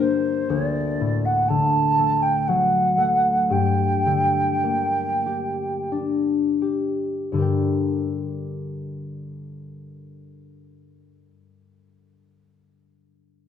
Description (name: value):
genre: celtic folk, Celtic slow air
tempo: 39-62 BPM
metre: 3/4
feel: rubato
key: G minor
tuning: A4 = 440 Hz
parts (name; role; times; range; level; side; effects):
- breathy mellow wooden flute; melody; 0.0-5.9 s; C5 to A5; -21 LUFS; right 2 dB; none
- concert harp; accompaniment; 0.0-11.2 s; D2 to G5; -23 LUFS; left 4 dB; none
room: moderate recital hall reverb, RT60 1.7 s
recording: minimal, uncompressed stereo recording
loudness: -19 LUFS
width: side -8 dB against mid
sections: 0.5-7.4 A section; 7.4-11.8 B section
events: slowing down 0.5-7.4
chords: 0.5 D; 3.5 Gm